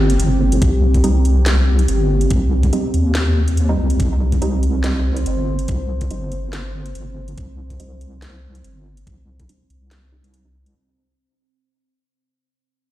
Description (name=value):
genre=deep dubstep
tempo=142 BPM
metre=4/4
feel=swing 55% on 16ths, half-time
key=C minor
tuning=A4 = 440 Hz
part: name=deep dark ambient pad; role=sustained chords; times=0.0-10.8 s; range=C4 to C5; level=-23 LUFS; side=right 1 dB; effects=chorus, built-in reverb
part: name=deep soft wobble bass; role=bass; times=0.0-10.7 s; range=G1 to Eb2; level=-17 LUFS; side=equal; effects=chorus
part: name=garage drum kit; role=drums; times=0.1-10.7 s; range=hi-hat, snare drum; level=-27 LUFS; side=equal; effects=studio reverb
part: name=electronic kick drum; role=drums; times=0.6-9.5 s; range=none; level=-19 LUFS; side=equal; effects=studio reverb
part: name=filtered dub chord stab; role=stabs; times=1.0-10.5 s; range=G3 to Eb4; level=-26 LUFS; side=right 3 dB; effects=analog chorus, dub echo
room=light reverb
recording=played on a big sound system in a bare room, stone room reverb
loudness=-15 LUFS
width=side -14 dB against mid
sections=0.0-10.8 A section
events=fade-out 0.0-10.8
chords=0.0 Cm